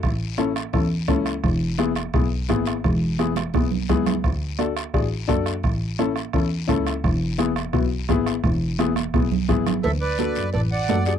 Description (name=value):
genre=latin, cumbia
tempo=171 BPM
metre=4/4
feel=straight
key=unclear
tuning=A4 = 440 Hz
part: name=clear double bass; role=bass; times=0.0-11.2 s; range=E1 to F#2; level=-24 LUFS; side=equal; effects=none
part: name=bombo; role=percussion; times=0.0-9.8 s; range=none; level=-26 LUFS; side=right 2 dB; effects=none
part: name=congas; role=percussion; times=0.0-11.1 s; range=none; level=-28 LUFS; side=right 14 dB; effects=none
part: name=guiro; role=percussion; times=0.0-11.2 s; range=none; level=-37 LUFS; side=left 17 dB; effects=none
part: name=warm upright piano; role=accompaniment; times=0.4-11.2 s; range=B3 to A4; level=-24 LUFS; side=left 11 dB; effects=none
part: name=accordion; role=melody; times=9.8-11.1 s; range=A4 to F#5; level=-26 LUFS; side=right 5 dB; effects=none
part: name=cowbell and timbales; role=percussion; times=9.8-11.1 s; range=none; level=-29 LUFS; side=right 6 dB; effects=none
room=little or no reverb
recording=dry, close 1970s-style studio recording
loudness=-20 LUFS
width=side -8 dB against mid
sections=0.0-9.8 A section; 9.8-11.2 B section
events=drum fill 3.4-4.2, 9.0-9.8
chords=0.0 A; 1.4 E; 4.2 D; 5.6 A; 7.0 E; 9.8 D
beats=| 0.04 0.39 0.74 1.09 | 1.44 1.79 2.14 2.49 | 2.84 3.19 3.54 3.89 | 4.24 4.59 4.94 5.29 | 5.64 5.99 6.34 6.69 | 7.04 7.39 7.74 8.09 | 8.44 8.79 9.14 9.49 | 9.84 10.19 10.54 10.89